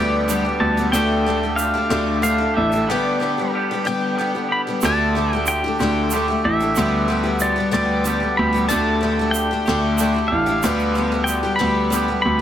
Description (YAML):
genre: folk rock and heartland rock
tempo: 62 BPM (dotted quarters)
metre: 6/8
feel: straight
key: G major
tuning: A4 = 440 Hz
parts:
  - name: pedal steel guitar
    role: melody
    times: 0.0-12.4 s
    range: D5 to B5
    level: -23 LUFS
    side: left 1 dB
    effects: none
  - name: picked twelve-string acoustic guitar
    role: accompaniment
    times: 0.0-12.4 s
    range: D3 to G4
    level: -22 LUFS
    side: left 5 dB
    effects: none
  - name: tonewheel organ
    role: sustained chords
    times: 0.0-4.8 s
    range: D4 to B5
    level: -32 LUFS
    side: right 1 dB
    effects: slow rotary speaker, chorus vibrato
  - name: twangy electric guitar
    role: riff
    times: 0.0-12.4 s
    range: D3 to G4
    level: -24 LUFS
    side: right 4 dB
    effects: none
  - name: warm grand piano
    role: bass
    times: 0.0-12.4 s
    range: A1 to D2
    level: -22 LUFS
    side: right 1 dB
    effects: none
  - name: egg shaker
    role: percussion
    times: 0.3-12.1 s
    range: none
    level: -30 LUFS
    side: right 10 dB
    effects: none
room: light reverb, studio reverb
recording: none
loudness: -17 LUFS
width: side -10 dB against mid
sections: 0.0-4.8 A section; 4.8-12.4 A section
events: break 2.9-4.8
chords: 0.0 G/D; 0.9 Dsus4; 2.9 G/D; 4.8 Dsus4; 6.8 G/D; 8.7 Dsus4; 10.6 G/D